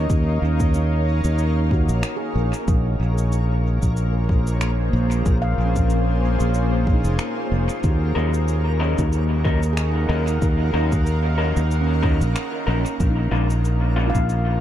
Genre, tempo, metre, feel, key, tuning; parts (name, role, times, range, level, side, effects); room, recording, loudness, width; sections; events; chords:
ambient dub; 93 BPM; 4/4; swing 56% on 16ths; A4 = 440 Hz
granular cloud pad; sustained chords; 0.0-14.6 s; Bb3 to Gb5; -28 LUFS; equal; built-in reverb
handpan; arpeggios; 0.0-14.6 s; Db4 to F5; -31 LUFS; right 2 dB; tape echo
fingered electric bass; bass; 0.0-14.6 s; F1 to Eb2; -20 LUFS; equal; tube saturation
backwards swelling texture; texture; 0.1-14.6 s; Bb3 to Bb4; -33 LUFS; left 2 dB; built-in reverb
electronic cabasa and finger snaps; drums; 0.1-14.4 s; -35 LUFS; equal; small room reverb, dub echo
electronic kick drum; drums; 0.1-14.3 s; -22 LUFS; equal; small room reverb
electric guitar through a small old amp; stabs; 8.2-14.2 s; Db3 to Bb4; -28 LUFS; left 3 dB; dub echo
little or no reverb; echo-heavy mix; -18 LUFS; side -12 dB against mid
0.0-14.6 A section
0.0 Bbm7; 7.8 Ebm7; 13.0 Bbm7